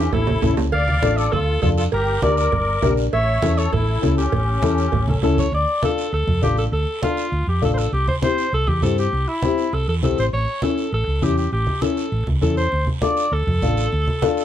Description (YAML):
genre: latin, cumbia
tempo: 200 BPM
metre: 4/4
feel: straight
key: D minor from 5.5 s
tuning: A4 = 440 Hz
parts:
  - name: bright alto saxophone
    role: melody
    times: 0.0-14.4 s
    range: E4 to F5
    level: -23 LUFS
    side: equal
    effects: none
  - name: musette accordion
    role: second line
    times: 0.0-5.2 s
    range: C#4 to D5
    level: -27 LUFS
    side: left 6 dB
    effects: none
  - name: dark upright piano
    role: accompaniment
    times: 0.0-14.4 s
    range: C4 to Bb4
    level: -22 LUFS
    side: left 6 dB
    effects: none
  - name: hollow-body short-scale fingered electric bass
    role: bass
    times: 0.0-14.0 s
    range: G1 to G2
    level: -21 LUFS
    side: right 1 dB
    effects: none
  - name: congas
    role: percussion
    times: 0.1-14.4 s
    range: none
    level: -24 LUFS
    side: right 2 dB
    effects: none
  - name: cowbell and timbales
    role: percussion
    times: 0.1-5.4 s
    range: none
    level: -28 LUFS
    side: right 9 dB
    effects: none
  - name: guiro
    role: percussion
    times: 0.1-14.4 s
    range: none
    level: -38 LUFS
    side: right 7 dB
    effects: none
room: light reverb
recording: dark, warm production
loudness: -17 LUFS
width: side -10 dB against mid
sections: 0.0-5.5 A section; 5.5-14.4 B section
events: drum fill 0.0-0.7, 5.1-5.5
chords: 0.0 A; 0.7 Dm; 1.9 Gm; 3.1 A7; 5.5 Dm; 7.9 C; 10.3 A7; 12.7 Dm